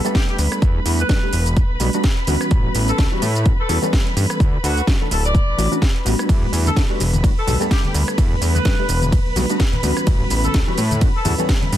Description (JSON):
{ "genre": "filtered disco house", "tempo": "127 BPM", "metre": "4/4", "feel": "swing 56% on 16ths", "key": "E dorian", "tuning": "A4 = 440 Hz", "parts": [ { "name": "overdriven reed electric piano", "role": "accompaniment", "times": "0.0-11.8 s", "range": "E3 to A4", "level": "-24 LUFS", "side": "right 1 dB", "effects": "fast tremolo, phaser, sidechain pumping" }, { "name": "muted symphonic violin section", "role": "sustained chords", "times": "0.0-11.8 s", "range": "B4 to B5", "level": "-28 LUFS", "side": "left 1 dB", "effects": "sidechain pumping" }, { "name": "house drum kit", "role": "drums", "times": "0.0-11.8 s", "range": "hi-hat, ride cymbal, rim click, shaker, snare drum", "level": "-26 LUFS", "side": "right 1 dB", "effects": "sidechain pumping on hats, sidechain pumping on cymbals, sidechain pumping on perc" }, { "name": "mellow horn section", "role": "melody", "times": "0.1-11.3 s", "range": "F#4 to D5", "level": "-27 LUFS", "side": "left 2 dB", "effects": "vintage 12-bit sampler grit, sidechain pumping, dub echo" }, { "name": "electronic kick drum", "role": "drums", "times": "0.1-11.6 s", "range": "none", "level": "-17 LUFS", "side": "equal", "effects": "none" }, { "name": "fat analog bass", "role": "bass", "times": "0.4-11.8 s", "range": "D1 to A2", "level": "-20 LUFS", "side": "equal", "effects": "sidechain pumping" }, { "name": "congas and maracas", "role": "percussion", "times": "6.3-11.8 s", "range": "none", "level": "-27 LUFS", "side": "left 2 dB", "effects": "none" } ], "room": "digital ambience", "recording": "dense, heavily limited modern master", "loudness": "-16 LUFS", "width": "side -12 dB against mid", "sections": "0.0-11.8 A section", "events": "none", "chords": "0.0 Em11; 2.5 A13; 4.4 Dmaj7; 6.3 Em11; 10.1 A13", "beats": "0.15 | 0.62 1.09 1.57 2.04 | 2.51 2.98 3.46 3.93 | 4.40 4.88 5.35 5.82 | 6.29 6.76 7.24 7.71 | 8.18 8.65 9.13 9.60 | 10.07 10.54 11.02 11.49" }